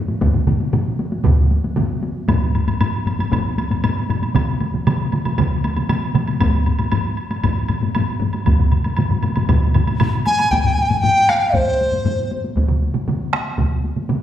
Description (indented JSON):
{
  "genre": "japanese traditional, taiko drum ensemble",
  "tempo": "117 BPM",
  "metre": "4/4",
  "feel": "straight",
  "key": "unclear",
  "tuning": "A4 = 440 Hz",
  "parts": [
    { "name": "solo taiko drums", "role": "percussion", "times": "0.1-14.2 s", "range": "none", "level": "-24 LUFS", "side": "left 2 dB", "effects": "none" },
    { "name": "taiko ensemble", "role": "percussion", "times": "0.2-12.2 s", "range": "none", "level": "-21 LUFS", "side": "left 3 dB", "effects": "none" },
    { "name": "taiko ensemble", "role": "percussion", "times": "0.2-14.2 s", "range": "none", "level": "-21 LUFS", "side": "right 3 dB", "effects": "none" },
    { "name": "taiko ensemble", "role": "percussion", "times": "0.2-13.7 s", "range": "none", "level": "-20 LUFS", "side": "right 1 dB", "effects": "none" },
    { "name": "woodblock", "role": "percussion", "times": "2.3-10.5 s", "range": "none", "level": "-28 LUFS", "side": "right 2 dB", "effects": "none" },
    { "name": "mellow hollow dizi", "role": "melody", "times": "10.3-12.3 s", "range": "C5 to Ab5", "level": "-16 LUFS", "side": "left 1 dB", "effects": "none" }
  ],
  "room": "wet recital hall reverb, RT60 1.3 s",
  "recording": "recorded in a church or concert hall",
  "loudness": "-16 LUFS",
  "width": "side -11 dB against mid",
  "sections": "0.0-10.5 A section; 10.5-14.2 B section",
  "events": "none",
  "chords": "none",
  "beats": "| 0.21 0.73 1.25 1.77 | 2.28 2.80 3.32 3.83 | 4.35 4.86 5.38 5.89 | 6.41 6.92 7.44 7.95 | 8.46 8.98 9.49 10.00 | 10.52 11.03 11.54 12.05 | 12.56 13.08 13.59 14.10"
}